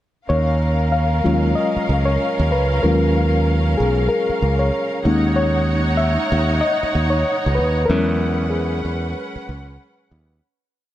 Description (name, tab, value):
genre	soul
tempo	95 BPM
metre	4/4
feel	swing 58% on 16ths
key	Eb minor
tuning	A4 = 440 Hz
part	warm studio string section	second line	0.3-10.4 s	Db4 to Gb5	-24 LUFS	right 1 dB	none
part	reed electric piano	accompaniment	0.3-10.5 s	Gb3 to F5	-20 LUFS	left 2 dB	fast tremolo
part	modern bright fingered electric bass	bass	0.3-10.4 s	Cb2 to E2	-19 LUFS	right 1 dB	none
room	light reverb, studio ambience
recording	dark, warm production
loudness	-16 LUFS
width	side -13 dB against mid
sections	0.3-10.4 verse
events	reed electric piano solo 0.3-10.4; fade-out 7.9-10.4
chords	0.3 Ebm11; 5.0 Dbm11; 7.9 E69